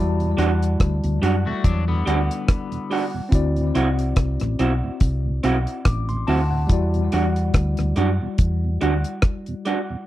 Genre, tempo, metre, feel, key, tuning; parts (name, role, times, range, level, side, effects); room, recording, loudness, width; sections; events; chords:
lovers rock reggae; 71 BPM; 4/4; swing 57% on 16ths; E minor; A4 = 442 Hz
tine electric piano; accompaniment; 0.0-10.1 s; G3 to D6; -27 LUFS; left 3 dB; medium stereo tremolo, tape echo
hollow-body short-scale fingered electric bass; bass; 0.0-9.0 s; A1 to F#2; -21 LUFS; equal
mellow tonewheel organ; accompaniment; 0.2-10.0 s; D2 to F#4; -29 LUFS; right 4 dB; chorus vibrato, slow rotary speaker
deep reggae drum kit; drums; 0.2-9.9 s; hi-hat, kick drum, rim click; -19 LUFS; equal
electric guitar through a small old amp; stabs; 0.4-9.8 s; G3 to F#4; -24 LUFS; right 4 dB; spring reverb
electric guitar at the edge of break-up; arpeggios; 1.5-3.1 s; D3 to F#4; -29 LUFS; left 6 dB
little or no reverb; dry, close 1970s-style studio recording; -19 LUFS; side -14 dB against mid
0.0-10.1 A section
0.0 Em9; 3.3 D9; 6.7 Em9